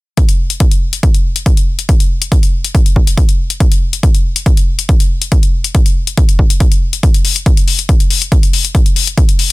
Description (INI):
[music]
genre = driving peak-time techno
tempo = 140 BPM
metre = 4/4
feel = straight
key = none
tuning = none
[part]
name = electronic hi-hat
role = drums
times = 0.2-9.5 s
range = none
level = -18 LUFS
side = left 9 dB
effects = none
[part]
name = electronic kick drum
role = drums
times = 0.2-9.3 s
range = none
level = -10 LUFS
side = equal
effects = none
[sound]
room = little or no reverb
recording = dense, heavily limited modern master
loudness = -9 LUFS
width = side -21 dB against mid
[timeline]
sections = 0.2-9.5 A section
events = none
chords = none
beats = | 0.17 0.60 1.03 1.46 | 1.89 2.32 2.75 3.17 | 3.60 4.03 4.46 4.89 | 5.32 5.75 6.17 6.60 | 7.03 7.46 7.89 8.32 | 8.75 9.18